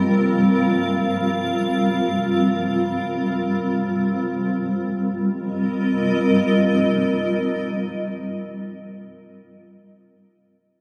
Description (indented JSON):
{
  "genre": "ambient",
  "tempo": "free time",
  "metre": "none",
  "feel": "none",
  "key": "C minor",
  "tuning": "A4 = 440 Hz",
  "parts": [
    { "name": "granular cloud pad", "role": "sustained chords", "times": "0.0-8.6 s", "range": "G3 to F5", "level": "-21 LUFS", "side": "equal", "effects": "built-in reverb" }
  ],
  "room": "wet plate reverb, RT60 2.9 s",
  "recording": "none",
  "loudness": "-21 LUFS",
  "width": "mono",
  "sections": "0.0-4.5 A section; 4.5-7.8 B section",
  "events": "none",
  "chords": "0.0 C7(no3); 4.5 Cm7"
}